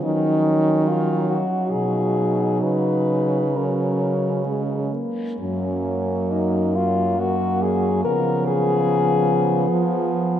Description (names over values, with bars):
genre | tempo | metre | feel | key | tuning
classical, lyrical piece for horn quartet | 63-74 BPM | 3/4 | rubato | F# major | A4 = 441 Hz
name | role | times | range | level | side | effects
warm French horn | melody | 0.0-10.1 s | C#4 to B4 | -23 LUFS | left 4 dB | none
mellow French horn | second line | 0.0-10.4 s | A#3 to D#4 | -26 LUFS | right 4 dB | none
dark French horn | accompaniment | 0.0-10.4 s | E#3 to A#3 | -24 LUFS | equal | none
clear French horn | bass | 0.0-10.4 s | F#2 to E#3 | -25 LUFS | right 2 dB | none
room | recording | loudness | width
wet cathedral reverb, RT60 6.8 s | in a vast, echoing space | -18 LUFS | side -10 dB against mid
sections
0.0-10.4 A section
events
none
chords
0.0 D#m7; 1.7 G#m7/B; 2.6 F#/C#; 4.5 C#5; 5.4 F#; 8.1 C#7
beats
| 0.03 0.86 1.72 | 2.63 3.56 4.47 | 5.41 6.31 7.20 | 8.05 8.89 9.70